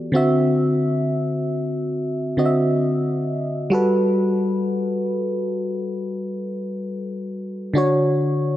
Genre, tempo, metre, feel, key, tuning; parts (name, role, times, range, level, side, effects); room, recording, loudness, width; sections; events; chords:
R&B; free time; A4 = 437 Hz
FM electric piano; solo; 0.0-8.6 s; D3 to E5; -19 LUFS; equal; chorus
moderate plate reverb, RT60 3.0 s; dark, warm production; -19 LUFS; side -13 dB against mid
0.0-8.6 A section
0.1 D9; 3.7 Gmaj9; 7.7 Dmaj7